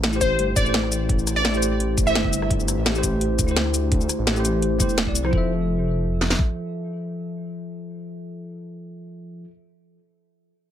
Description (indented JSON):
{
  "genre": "liquid drum and bass",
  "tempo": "170 BPM",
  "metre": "4/4",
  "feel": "straight",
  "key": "F major",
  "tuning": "A4 = 436 Hz",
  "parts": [
    { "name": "dark detuned saw bass", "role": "bass", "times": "0.0-6.3 s", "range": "E1 to D2", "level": "-25 LUFS", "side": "equal", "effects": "tube saturation" },
    { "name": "drum and bass drum kit", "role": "drums", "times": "0.0-5.3 s", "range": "hi-hat, rim click, shaker, snare drum", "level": "-24 LUFS", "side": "equal", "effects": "none" },
    { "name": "bell-like tine electric piano", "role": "accompaniment", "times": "0.1-9.5 s", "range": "F3 to E5", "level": "-26 LUFS", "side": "left 1 dB", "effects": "analog chorus, tape echo" },
    { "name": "glassy wavetable pluck", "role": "melody", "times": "0.2-2.4 s", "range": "C5 to E5", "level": "-25 LUFS", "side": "left 1 dB", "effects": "chorus, tape echo" },
    { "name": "drum and bass drum kit", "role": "drums", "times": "0.2-6.5 s", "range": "kick drum, snare drum", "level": "-23 LUFS", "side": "equal", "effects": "none" }
  ],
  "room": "light reverb",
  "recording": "none",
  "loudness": "-19 LUFS",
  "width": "side -10 dB against mid",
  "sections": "0.0-5.3 A section; 5.3-8.2 B section",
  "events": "drop 0.0-5.3",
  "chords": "0.0 Am7; 5.3 Fmaj7",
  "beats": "0.03 0.39 0.74 | 1.09 1.45 1.80 2.15 | 2.50 2.86 3.21 3.56 | 3.92 4.27 4.62 4.98 | 5.33 5.68 6.03 6.39 | 6.74 7.09 7.45 7.80"
}